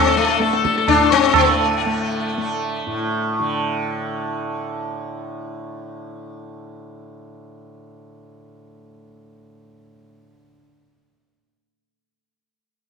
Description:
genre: indian classical, Hindustani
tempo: 131 BPM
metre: 5/4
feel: straight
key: unclear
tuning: A4 = 440 Hz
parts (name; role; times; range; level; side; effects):
- sitar; melody; 0.0-4.6 s; A3 to A4; -18 LUFS; left 9 dB; slapback echo
- tanpura; drone; 0.0-10.5 s; A2 to A3; -25 LUFS; right 1 dB; stereo widening
- tabla; percussion; 0.4-1.5 s; none; -19 LUFS; right 9 dB; none
room: moderate echo chamber reverb, RT60 2.5 s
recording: 1960s-style stereo with parts hard left and right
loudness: -17 LUFS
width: side -5 dB against mid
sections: 0.0-1.3 A section; 1.3-3.6 B section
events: none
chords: none

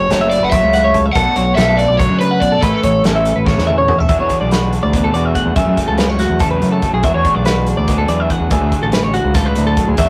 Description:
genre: math rock and midwest emo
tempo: 285 BPM (eighths)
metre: 7/8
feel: straight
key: unclear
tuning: A4 = 439 Hz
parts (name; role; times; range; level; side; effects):
- overdriven semi-hollow guitar; melody; 0.0-3.8 s; A4 to F#5; -19 LUFS; equal; none
- clean electric guitar; accompaniment; 0.0-10.1 s; F#2 to A4; -24 LUFS; equal; none
- twelve-string electric guitar; arpeggios; 0.0-10.1 s; F#4 to F#5; -20 LUFS; equal; none
- growling fingered electric bass; bass; 0.0-10.1 s; F#1 to F#2; -20 LUFS; equal; overdrive
- crunchy overdriven guitar; riff; 0.1-10.1 s; D3 to G#4; -28 LUFS; equal; none
- loose indie drum kit; drums; 0.1-10.1 s; hi-hat, kick drum, snare drum, toms; -21 LUFS; equal; none
room: moderate small room reverb, RT60 0.6 s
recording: rough rehearsal-room recording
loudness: -14 LUFS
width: mono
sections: 0.0-4.1 A section; 4.1-10.1 B section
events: drum fill 3.5-4.1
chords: 0.0 F#m7; 1.2 Bm7; 2.6 A; 4.1 E9sus4; 5.6 F#m11; 7.0 E9sus4; 8.5 Dmaj9#11

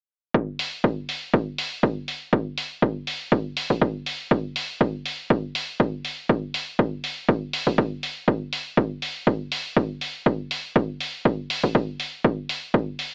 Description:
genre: deep house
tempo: 121 BPM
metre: 4/4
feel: swing 54% on 16ths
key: none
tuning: none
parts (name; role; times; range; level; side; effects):
- electronic kick drum; drums; 0.3-12.8 s; none; -24 LUFS; equal; none
- electronic hi-hat; drums; 0.6-13.1 s; none; -32 LUFS; equal; none
room: little or no reverb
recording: AM radio sound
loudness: -25 LUFS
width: mono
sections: 0.3-13.1 A section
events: none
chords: none

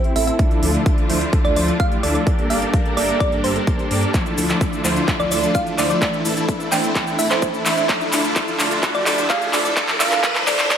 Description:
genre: EDM, festival progressive house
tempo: 128 BPM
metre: 4/4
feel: straight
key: D minor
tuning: A4 = 439 Hz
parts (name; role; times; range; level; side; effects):
- rich studio string section; sustained chords; 0.0-10.8 s; D3 to Bb4; -27 LUFS; left 1 dB; sidechain pumping
- big supersaw lead; riff; 0.0-10.8 s; E3 to E5; -22 LUFS; equal; sidechain pumping, low-pass filter
- big-room dance drum kit; drums; 0.0-10.8 s; handclaps, hi-hat, shaker; -22 LUFS; equal; overdrive, high-pass filter on hats, high-pass filter on snare, high-pass filter on perc, high-pass filter on room
- thumb-piano-like synth pluck; melody; 0.2-10.8 s; C5 to G5; -23 LUFS; right 2 dB; chorus, phaser, dub echo
- wide detuned saw bass; bass; 0.2-10.6 s; G1 to G2; -27 LUFS; equal; chorus, sidechain pumping
- electronic kick drum; drums; 0.4-10.8 s; none; -20 LUFS; equal; overdrive
- riser; sound effects; 6.6-10.8 s; none; -28 LUFS; equal; none
room: moderate lush hall reverb, RT60 1.7 s, digital ambience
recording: high-pass filter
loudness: -16 LUFS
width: side -8 dB against mid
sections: 0.0-10.8 A section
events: build-up 0.0-10.8; filter sweep on supersaw synth 0.0-10.8; filter sweep 0.0-10.8; drum fill 4.1-10.8; riser 6.6-10.8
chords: 0.4 Dmadd9; 2.3 Gmadd9; 4.1 Dmadd9; 6.0 Am; 7.9 Dmadd9; 9.8 Gmadd9

